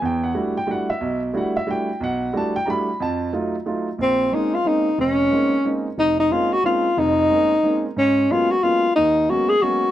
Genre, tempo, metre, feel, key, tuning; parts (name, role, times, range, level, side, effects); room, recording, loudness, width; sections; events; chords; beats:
jazz; 181 BPM; 3/4; swing 62% on 8ths; Bb minor from 4.0 s; A4 = 441 Hz
warm grand piano; accompaniment; 0.0-9.8 s; F1 to B5; -23 LUFS; right 2 dB
breathy tenor saxophone; melody; 4.0-9.9 s; C4 to Ab4; -17 LUFS; left 1 dB
small room ambience; dry, close 1970s-style studio recording; -18 LUFS; side -12 dB against mid
0.0-4.0 A section; 4.0-9.9 B section
0.0 Em11; 3.0 F7b9; 4.0 Bbm11; 8.0 Abm11
| 0.01 0.34 0.67 | 1.00 1.33 1.67 | 2.00 2.33 2.66 | 2.99 3.32 3.65 | 3.98 4.31 4.64 | 4.97 5.31 5.64 | 5.97 6.30 6.63 | 6.96 7.29 7.63 | 7.96 8.29 8.62 | 8.95 9.28 9.61